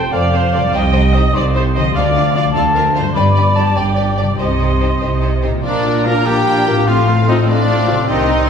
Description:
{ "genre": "cinematic", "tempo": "98 BPM (dotted quarters)", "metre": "6/8", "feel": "straight", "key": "C dorian", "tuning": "A4 = 440 Hz", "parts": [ { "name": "warm symphonic violin section", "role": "melody", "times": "0.0-8.5 s", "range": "C5 to Bb5", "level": "-24 LUFS", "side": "left 4 dB", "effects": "none" }, { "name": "mellow cor anglais", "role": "second line", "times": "0.0-8.5 s", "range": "B4 to A5", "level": "-20 LUFS", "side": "right 1 dB", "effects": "none" }, { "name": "warm symphonic viola section", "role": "accompaniment", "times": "0.0-8.5 s", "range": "Eb3 to Eb5", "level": "-21 LUFS", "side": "equal", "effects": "none" }, { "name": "concert harp", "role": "arpeggios", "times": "0.0-8.5 s", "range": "G2 to D5", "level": "-21 LUFS", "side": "left 4 dB", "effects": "none" }, { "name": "rich symphonic cello section", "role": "bass", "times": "0.0-8.5 s", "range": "C2 to C3", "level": "-20 LUFS", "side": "equal", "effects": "none" }, { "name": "rich symphonic double bass section", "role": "bass", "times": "0.0-8.5 s", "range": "F1 to D2", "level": "-19 LUFS", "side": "right 2 dB", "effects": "none" }, { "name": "warm symphonic violin section", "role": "second line", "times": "0.1-8.5 s", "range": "A3 to Bb4", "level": "-25 LUFS", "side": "left 2 dB", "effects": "none" }, { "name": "bright large flute ensemble", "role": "second line", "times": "5.6-8.5 s", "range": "Bb5 to C6", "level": "-25 LUFS", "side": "equal", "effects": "none" }, { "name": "warm clarinet", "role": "second line", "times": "5.7-8.5 s", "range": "C4 to D4", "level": "-24 LUFS", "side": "left 5 dB", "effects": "none" }, { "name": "bright trumpet", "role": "stabs", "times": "5.7-8.5 s", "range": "D4 to Bb4", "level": "-18 LUFS", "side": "right 1 dB", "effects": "none" }, { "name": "mellow French horn section", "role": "sustained chords", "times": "6.1-8.0 s", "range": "Bb3 to F4", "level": "-23 LUFS", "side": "left 2 dB", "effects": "none" } ], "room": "wet recital hall reverb, RT60 1.5 s", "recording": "recorded in a church or concert hall", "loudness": "-12 LUFS", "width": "side -7 dB against mid", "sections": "0.0-5.6 A section; 5.6-8.5 B section", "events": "none", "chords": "0.0 F; 0.7 Cm; 1.9 Dm; 3.2 G; 4.4 Cm; 5.6 Bb; 6.9 F/A" }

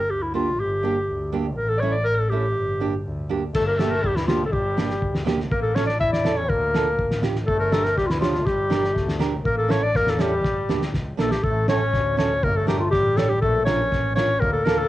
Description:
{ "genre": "klezmer", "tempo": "122 BPM", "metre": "2/4", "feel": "straight", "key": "G dorian sharp4", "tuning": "A4 = 441 Hz", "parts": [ { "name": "warm clarinet", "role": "melody", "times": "0.0-14.9 s", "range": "E4 to E5", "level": "-23 LUFS", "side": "equal", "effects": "cassette tape" }, { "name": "rich double bass", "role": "bass", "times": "0.1-14.9 s", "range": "G1 to E2", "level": "-27 LUFS", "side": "equal", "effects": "none" }, { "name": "nylon-string guitar", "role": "accompaniment", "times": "0.3-14.8 s", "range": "A3 to C#5", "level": "-27 LUFS", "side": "right 6 dB", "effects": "cassette tape" }, { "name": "brilliant trombone", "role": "second line", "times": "3.5-14.9 s", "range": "E3 to E4", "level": "-30 LUFS", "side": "left 7 dB", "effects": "cassette tape" }, { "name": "cloth-damped thuddy drum kit", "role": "drums", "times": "3.5-14.8 s", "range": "crash cymbal, kick drum, snare drum", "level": "-26 LUFS", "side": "equal", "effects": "cassette tape" } ], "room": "light reverb, small room ambience", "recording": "home recording on cassette, nothing above 10.4 kHz", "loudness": "-20 LUFS", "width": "side -15 dB against mid", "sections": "0.0-3.5 A section; 3.5-11.4 A section; 11.4-14.9 B section", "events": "drum fill 10.4-11.4", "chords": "0.0 Gm; 1.6 A; 2.6 Gm; 5.5 A; 6.5 Dm; 7.5 Gm; 9.4 A; 10.4 Gm; 11.4 A; 12.4 Gm; 13.4 Bb" }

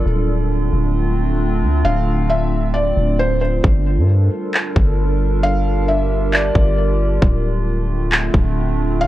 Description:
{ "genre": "hip hop, atmospheric cloud-rap", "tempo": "134 BPM", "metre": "4/4", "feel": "half-time", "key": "D minor", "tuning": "A4 = 438 Hz", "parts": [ { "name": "warbly tape-like pad", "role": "sustained chords", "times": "0.0-9.1 s", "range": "D3 to Bb4", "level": "-22 LUFS", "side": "right 2 dB", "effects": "chorus, built-in reverb, sidechain pumping" }, { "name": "long sustained 808-style bass", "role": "bass", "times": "0.0-9.1 s", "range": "D1 to G2", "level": "-18 LUFS", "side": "equal", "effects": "none" }, { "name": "felt-muted upright piano", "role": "melody", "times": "1.8-9.1 s", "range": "C5 to F5", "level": "-22 LUFS", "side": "equal", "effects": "tape echo" }, { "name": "trap drum kit", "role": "drums", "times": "3.6-8.4 s", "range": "handclaps, kick drum", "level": "-15 LUFS", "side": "equal", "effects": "none" } ], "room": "digital ambience", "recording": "worn, warbling old tape, cassette tape, warbly pitch drift", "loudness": "-15 LUFS", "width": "side -14 dB against mid", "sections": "0.0-9.1 A section", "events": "hi-hats muted 3.6-9.1", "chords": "0.1 Dm7; 3.6 Gm9; 7.2 Dm7" }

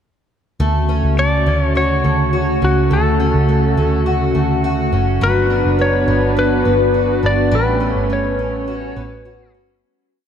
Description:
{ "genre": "dream pop", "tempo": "104 BPM", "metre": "4/4", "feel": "straight", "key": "D major", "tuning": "A4 = 439 Hz", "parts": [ { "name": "warm analog pad", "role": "sustained chords", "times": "0.6-9.8 s", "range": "C#3 to B4", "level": "-19 LUFS", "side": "right 3 dB", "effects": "lush chorus" }, { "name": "fingerpicked twelve-string acoustic guitar", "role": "arpeggios", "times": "0.6-10.3 s", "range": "F#3 to F#4", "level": "-21 LUFS", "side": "left 4 dB", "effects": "wide subtle chorus, tape echo" }, { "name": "vintage muted picked electric bass", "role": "bass", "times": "0.6-9.8 s", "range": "F#1 to D2", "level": "-18 LUFS", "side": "equal", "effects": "none" }, { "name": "clean lap steel guitar", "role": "melody", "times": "1.2-9.5 s", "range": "F#4 to D5", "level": "-20 LUFS", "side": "left 2 dB", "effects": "tape echo" } ], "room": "moderate huge ambient reverb, RT60 4.0 s", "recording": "dark, warm production", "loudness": "-14 LUFS", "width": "side -8 dB against mid", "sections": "0.6-9.8 verse", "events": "fade-out 7.5-9.8", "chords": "0.6 Dmaj7; 5.2 Gmaj7; 7.5 A13" }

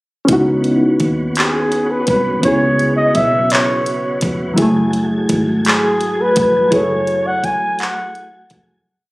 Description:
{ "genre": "slow six-eight R&B", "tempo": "56 BPM (dotted quarters)", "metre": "6/8", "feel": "straight", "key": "F# dorian", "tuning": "A4 = 440 Hz", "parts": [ { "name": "reed electric piano", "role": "accompaniment", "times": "0.2-8.9 s", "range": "C#3 to A4", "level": "-17 LUFS", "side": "equal", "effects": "overdrive, phaser" }, { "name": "tonewheel organ", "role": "sustained chords", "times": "0.3-8.8 s", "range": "F#3 to G#5", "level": "-26 LUFS", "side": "equal", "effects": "chorus vibrato, fast rotary speaker" }, { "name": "vintage muted fingered electric bass", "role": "bass", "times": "0.3-8.8 s", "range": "E1 to D#2", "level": "-23 LUFS", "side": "equal", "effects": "none" }, { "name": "smooth R&B drum kit", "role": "drums", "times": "0.3-8.7 s", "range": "handclaps, hi-hat, kick drum", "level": "-19 LUFS", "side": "equal", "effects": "none" }, { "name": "breathy flugelhorn", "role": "melody", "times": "1.4-8.6 s", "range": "G#4 to G#5", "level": "-16 LUFS", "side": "equal", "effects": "none" } ], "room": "light reverb, digital ambience", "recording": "recorded on a phone in the room, club reverb, compression", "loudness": "-13 LUFS", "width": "side -21 dB against mid", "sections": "0.3-8.9 chorus", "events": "fade-out 6.7-8.9", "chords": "0.3 C#m11; 4.6 F#m9" }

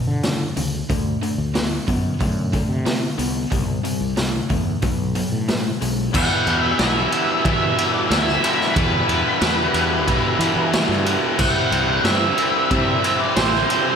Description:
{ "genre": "classic rock", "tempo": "92 BPM", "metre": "4/4", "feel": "straight", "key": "E minor", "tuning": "A4 = 438 Hz", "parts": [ { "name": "distorted electric guitar", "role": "riff", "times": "0.0-14.0 s", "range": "E2 to E4", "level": "-24 LUFS", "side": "left 10 dB", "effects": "overdrive, slapback echo" }, { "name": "overdriven electric guitar", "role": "riff", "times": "0.0-14.0 s", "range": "E2 to E4", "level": "-26 LUFS", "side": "right 10 dB", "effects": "slapback echo" }, { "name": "fretless electric bass", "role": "bass", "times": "0.1-13.6 s", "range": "A1 to E3", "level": "-25 LUFS", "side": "equal", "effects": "none" }, { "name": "raw garage drum kit", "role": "drums", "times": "0.2-13.9 s", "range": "crash cymbal, hi-hat, kick drum, ride cymbal, snare drum", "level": "-22 LUFS", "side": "equal", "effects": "none" }, { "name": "mellow tonewheel organ", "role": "sustained chords", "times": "5.8-14.0 s", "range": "A3 to E5", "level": "-33 LUFS", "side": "equal", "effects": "none" }, { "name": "tight distorted guitar", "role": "riff", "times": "6.1-14.0 s", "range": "E2 to C4", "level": "-28 LUFS", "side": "equal", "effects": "none" }, { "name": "octave-fuzz lead guitar", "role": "melody", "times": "6.2-14.0 s", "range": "B4 to F#5", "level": "-22 LUFS", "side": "right 2 dB", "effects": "wah, distortion" } ], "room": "moderate recital hall reverb, RT60 1.5 s, small room ambience", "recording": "big arena sound", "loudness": "-17 LUFS", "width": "side -7 dB against mid", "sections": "0.0-6.1 A section; 6.1-14.0 B section", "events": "none", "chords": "0.0 E5; 0.9 D; 3.5 C; 4.8 B5; 6.1 Emadd9; 11.4 C" }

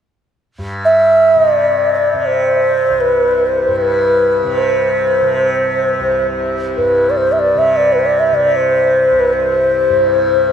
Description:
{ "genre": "indian classical", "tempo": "free time", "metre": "none", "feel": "none", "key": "C raga hamsadhwani", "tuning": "A4 = 440 Hz", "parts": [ { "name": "tanpura", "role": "drone", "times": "0.6-10.5 s", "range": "C2 to C3", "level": "-20 LUFS", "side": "left 1 dB", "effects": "none" }, { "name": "mellow bansuri", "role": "melody", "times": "0.8-10.5 s", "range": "B4 to E5", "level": "-11 LUFS", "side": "equal", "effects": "ping-pong delay" } ], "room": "wet huge ambient reverb, RT60 4.9 s", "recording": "dreamy mix soaked in reverb", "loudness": "-11 LUFS", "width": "side -8 dB against mid", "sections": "0.6-10.5 A section", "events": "none", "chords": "none" }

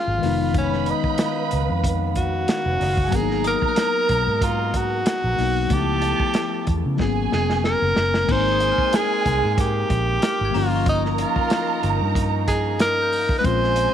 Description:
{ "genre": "lush 1970s-style soul", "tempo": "93 BPM", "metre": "4/4", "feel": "swing 54% on 16ths", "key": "G# dorian", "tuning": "A4 = 440 Hz", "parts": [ { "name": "clear tenor saxophone", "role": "melody", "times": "0.0-13.9 s", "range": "C#4 to C5", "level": "-23 LUFS", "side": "right 1 dB", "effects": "none" }, { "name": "mellow tine electric piano", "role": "accompaniment", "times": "0.0-13.9 s", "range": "D#3 to F4", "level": "-27 LUFS", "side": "left 13 dB", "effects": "medium stereo tremolo" }, { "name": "warm French horn section", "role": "sustained chords", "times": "0.0-13.9 s", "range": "Bb2 to E#5", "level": "-34 LUFS", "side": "right 1 dB", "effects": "none" }, { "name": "vintage muted fingered electric bass", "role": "bass", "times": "0.1-13.9 s", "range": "E#1 to C#3", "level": "-24 LUFS", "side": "right 1 dB", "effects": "none" }, { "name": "dark studio violin section", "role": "second line", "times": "0.2-13.9 s", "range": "Ab3 to B5", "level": "-29 LUFS", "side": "right 10 dB", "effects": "none" }, { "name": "warm soul drum kit", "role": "drums", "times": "0.2-13.9 s", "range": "crash cymbal, hi-hat, kick drum, snare drum", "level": "-25 LUFS", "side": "equal", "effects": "none" }, { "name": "glockenspiel with brass mallets", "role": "texture", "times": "3.4-13.9 s", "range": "Bb5 to Bb6", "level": "-35 LUFS", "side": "left 12 dB", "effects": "none" } ], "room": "light reverb", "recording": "1960s-style stereo with parts hard left and right", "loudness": "-18 LUFS", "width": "side -9 dB against mid", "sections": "0.0-8.3 A section; 8.3-13.9 A section", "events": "drum fill 7.0-8.3", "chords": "0.2 C#9/E#; 3.1 G#m9; 5.7 C#7alt; 7.0 G#m11; 8.3 Abmaj9; 10.5 Eb9/G" }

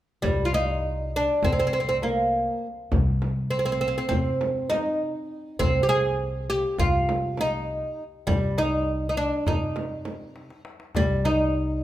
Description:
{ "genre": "Turkish makam ensemble", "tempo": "202 BPM (eighths)", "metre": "9/8", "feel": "straight", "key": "C makam nihavent", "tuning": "A4 = 441 Hz", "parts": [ { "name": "oud", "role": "melody", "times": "0.2-11.8 s", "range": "G3 to Ab4", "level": "-24 LUFS", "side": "right 1 dB", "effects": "none" }, { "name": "upright bass", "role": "bass", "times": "0.2-11.8 s", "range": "C2 to C3", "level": "-28 LUFS", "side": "left 1 dB", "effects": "none" }, { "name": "darbuka", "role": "percussion", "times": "0.2-11.2 s", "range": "none", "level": "-31 LUFS", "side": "left 2 dB", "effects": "none" }, { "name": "frame drum", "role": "percussion", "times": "0.2-11.4 s", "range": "none", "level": "-32 LUFS", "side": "right 2 dB", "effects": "none" } ], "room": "moderate recital hall reverb, RT60 1.4 s", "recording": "minimal, uncompressed stereo recording", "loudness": "-22 LUFS", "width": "side -13 dB against mid", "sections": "0.2-11.8 A section", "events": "drum fill 10.4-11.0", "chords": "none" }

